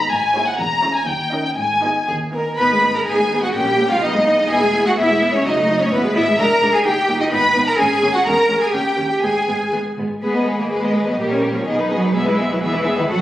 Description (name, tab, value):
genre	quick classical-period movement for string orchestra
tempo	126 BPM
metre	2/4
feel	rubato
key	G# minor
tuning	A4 = 440 Hz
part	rich chamber violin section	melody	0.0-13.2 s	Bb4 to B5	-21 LUFS	left 1 dB	none
part	rich studio violin section	second line	0.0-13.2 s	G4 to B5	-22 LUFS	left 1 dB	none
part	rich chamber viola section	accompaniment	0.0-13.2 s	F#3 to G#4	-23 LUFS	right 1 dB	none
part	dark chamber double bass section	bass	0.1-13.2 s	E1 to E2	-30 LUFS	right 1 dB	none
part	rich symphonic cello section	bass	0.1-13.2 s	D#2 to B4	-19 LUFS	right 1 dB	none
room	moderate scoring stage reverb, RT60 1.9 s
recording	recorded on a phone in the room, studio reverb, compression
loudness	-15 LUFS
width	side -14 dB against mid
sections	0.0-2.6 A section; 2.6-10.2 B section; 10.2-13.2 B section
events	none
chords	0.1 A#m7b5/G#; 0.6 C#m/E; 1.1 D#7; 1.6 G#m; 3.5 Gdim/Bb; 4.0 G#m/B; 4.5 E; 5.5 D#dim/F#; 5.9 E/G#; 6.4 A#7; 6.9 D#/G; 7.3 G#m; 7.8 G#9sus4; 8.3 C#m/E; 8.7 D#7; 9.2 G#m; 11.2 Gdim/Bb; 11.7 G#m/B; 12.2 E